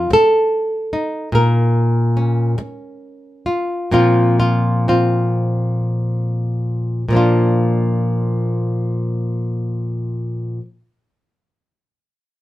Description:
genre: folk, solo fingerstyle acoustic guitar.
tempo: 32-49 BPM (dotted quarters).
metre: 6/8.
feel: straight.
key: unclear.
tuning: A4 = 441 Hz.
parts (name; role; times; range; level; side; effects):
nylon-string guitar; solo; 0.0-10.7 s; Bb2 to Bb4; -15 LUFS; equal; none.
room: wet studio reverb, RT60 0.6 s.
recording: band playing live in one room.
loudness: -15 LUFS.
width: side -15 dB against mid.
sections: 0.0-3.9 A section; 3.9-7.1 B section; 7.1-10.8 C section.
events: slowing down 1.3-7.1.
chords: 0.0 F7; 1.3 Bbm; 3.9 Bbsus2; 7.1 Bb.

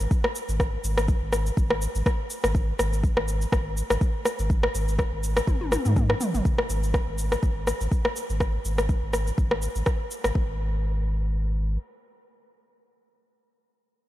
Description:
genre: afro house.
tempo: 123 BPM.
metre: 4/4.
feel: swing 55% on 16ths.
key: unclear.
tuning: A4 = 440 Hz.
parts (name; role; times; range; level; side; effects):
warm sub bass; bass; 0.0-11.8 s; G#1 to G#2; -26 LUFS; equal; sidechain pumping.
deep house drum kit; drums; 0.0-10.3 s; rim click, shaker, toms; -27 LUFS; equal; overdrive.
electronic kick drum; drums; 0.1-10.5 s; none; -24 LUFS; equal; overdrive.
room: light reverb.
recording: none.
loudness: -23 LUFS.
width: side -14 dB against mid.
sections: 0.0-6.5 A section; 6.5-10.4 B section; 10.4-14.1 C section.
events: drop 0.0-6.5; drum fill 5.5-6.5.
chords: none.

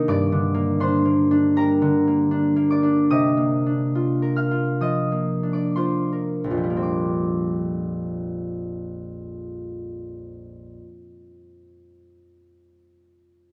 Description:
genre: classical, solo harp piece.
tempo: 54-86 BPM.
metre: 4/4.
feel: rubato.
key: Bb major.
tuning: A4 = 440 Hz.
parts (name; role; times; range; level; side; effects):
concert harp; solo; 0.0-11.1 s; Bb1 to G6; -23 LUFS; equal; none.
room: moderate recital hall reverb, RT60 1.5 s.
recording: none.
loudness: -22 LUFS.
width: mono.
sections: 0.0-6.8 A section; 6.8-10.8 B section.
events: slowing down 0.0-6.8.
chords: 0.1 Gm; 3.1 Cm11; 6.8 Bb69.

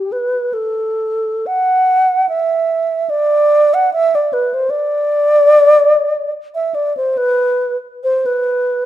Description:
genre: classical, free, expressive piece for unaccompanied alto flute.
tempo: 62-77 BPM.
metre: 4/4.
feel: rubato.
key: unclear.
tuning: A4 = 440 Hz.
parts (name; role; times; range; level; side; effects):
mellow wooden-headed alto flute; solo; 0.0-8.9 s; G4 to F#5; -12 LUFS; equal; none.
room: moderate recital hall reverb, RT60 1.6 s.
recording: close, detailed microphones.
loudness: -12 LUFS.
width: side -12 dB against mid.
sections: 0.0-8.9 A section.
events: none.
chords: none.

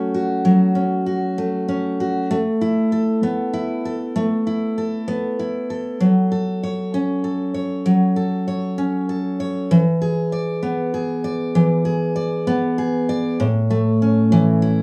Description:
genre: pop.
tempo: 65 BPM (dotted quarters).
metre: 6/8.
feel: straight.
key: A major.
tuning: A4 = 443 Hz.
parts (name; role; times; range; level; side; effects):
picked steel-string acoustic guitar; solo; 0.0-14.8 s; A2 to D5; -20 LUFS; equal; none.
room: moderate studio reverb, RT60 0.6 s.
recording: rough home demo mix, small room ambience.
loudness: -20 LUFS.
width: mono.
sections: 0.0-13.4 A section; 13.4-14.8 B section.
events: none.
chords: 0.0 F#m; 2.3 Asus2; 6.0 F#m; 9.7 E7; 13.4 A.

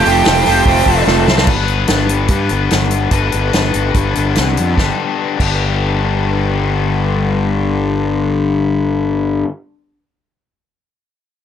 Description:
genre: classic rock.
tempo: 145 BPM.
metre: 4/4.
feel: straight.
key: G mixolydian.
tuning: A4 = 442 Hz.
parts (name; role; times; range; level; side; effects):
octave-fuzz lead guitar; melody; 0.0-1.0 s; G4; -15 LUFS; right 6 dB; distortion.
warm upright piano; accompaniment; 0.0-1.4 s; A3 to A4; -24 LUFS; right 6 dB; none.
overdriven electric guitar; riff; 0.0-9.5 s; G2 to B4; -17 LUFS; left 8 dB; none.
raw garage guitar; riff; 0.0-1.5 s; F2 to C4; -18 LUFS; right 15 dB; overdrive.
fuzz fingered electric bass; bass; 0.0-9.4 s; F1 to G2; -17 LUFS; right 1 dB; overdrive.
vintage drum kit; drums; 0.1-5.5 s; crash cymbal, hi-hat, kick drum, snare drum; -17 LUFS; equal; none.
room: little or no reverb.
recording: none.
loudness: -12 LUFS.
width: side -9 dB against mid.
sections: 0.0-1.5 A section; 1.5-4.8 B section; 4.8-8.1 C section.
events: drum fill 1.1-1.5.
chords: 0.0 F; 1.5 G.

